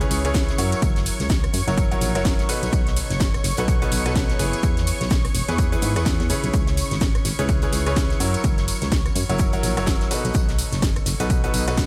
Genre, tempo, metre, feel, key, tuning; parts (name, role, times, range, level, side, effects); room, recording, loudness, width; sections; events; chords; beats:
piano house; 126 BPM; 4/4; swing 58% on 16ths; A4 = 439 Hz
analog string pad; sustained chords; 0.0-11.9 s; C#5 to C#6; -35 LUFS; equal; ensemble chorus, vintage 12-bit sampler grit, sidechain pumping
bright concert grand piano; riff; 0.0-11.9 s; B2 to C#5; -29 LUFS; equal; sidechain pumping, dub echo
solid FM bass; bass; 0.0-11.9 s; E1 to G#2; -28 LUFS; equal; sidechain pumping
house drum kit; drums; 0.0-11.9 s; hi-hat, ride cymbal, rim click, snare drum, tambourine; -30 LUFS; equal; overdrive
tight metal drum kit; drums; 0.0-11.9 s; hi-hat, shaker, snare drum; -39 LUFS; equal
electronic kick drum; drums; 0.3-11.9 s; -25 LUFS; equal; overdrive
studio ambience; -21 LUFS; mono
0.0-11.9 A section
0.0 C#m7; 0.6 F#7; 2.5 B7; 4.6 E; 6.5 C#m7; 8.2 F#7; 10.1 B7
0.35 | 0.82 1.30 1.77 2.25 | 2.73 3.20 3.68 4.16 | 4.63 5.11 5.58 6.06 | 6.54 7.01 7.49 7.97 | 8.44 8.92 9.39 9.87 | 10.35 10.82 11.30 11.78